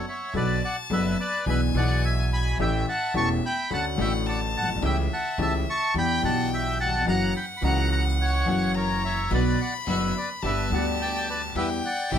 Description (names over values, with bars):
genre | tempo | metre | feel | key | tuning
tango | 107 BPM | 4/4 | rubato | B minor | A4 = 439 Hz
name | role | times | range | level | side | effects
bandoneon | melody | 0.0-12.2 s | A#4 to C#6 | -28 LUFS | equal | none
clear violin | second line | 0.0-12.2 s | E5 to B5 | -32 LUFS | left 3 dB | none
warm baby grand piano | accompaniment | 0.3-12.2 s | E1 to A4 | -28 LUFS | left 3 dB | none
upright bass | bass | 0.3-12.2 s | E1 to E2 | -27 LUFS | right 2 dB | none
clear studio string section | stabs | 9.3-12.2 s | B3 to G4 | -36 LUFS | equal | none
room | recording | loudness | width
moderate studio ambience, RT60 0.5 s | none | -22 LUFS | side -9 dB against mid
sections
0.3-12.2 A section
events
none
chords
0.3 Bm7; 1.5 E7/B; 2.6 A7; 3.7 Dmaj7; 4.8 A7/C#; 5.9 Em7; 7.1 F#7; 9.3 Bm; 10.4 G; 11.6 Em